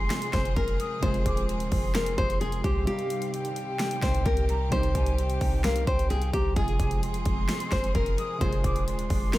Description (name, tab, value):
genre	hip hop, trap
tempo	130 BPM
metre	4/4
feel	half-time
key	unclear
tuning	A4 = 440 Hz
part	nylon-string guitar	melody	0.0-9.4 s	G4 to C5	-31 LUFS	left 1 dB	dub echo
part	concert flute	second line	0.0-9.4 s	F5 to Eb6	-36 LUFS	equal	dub echo
part	warbly lo-fi synth keys	accompaniment	0.0-9.4 s	C3 to Ab4	-34 LUFS	right 1 dB	chorus
part	bright studio string section	sustained chords	0.0-9.4 s	Eb3 to Ab4	-38 LUFS	left 2 dB	none
part	clean 808-style bass	bass	0.0-9.4 s	Eb1 to C2	-29 LUFS	equal	none
part	big-room dance drum kit	drums	0.1-9.4 s	finger snaps, hi-hat, kick drum, snare drum	-29 LUFS	equal	none
room	small room ambience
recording	echo-heavy mix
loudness	-24 LUFS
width	side -16 dB against mid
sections	0.0-9.4 A section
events	break 2.9-3.8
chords	0.0 Fm; 2.9 Cm; 6.6 Fm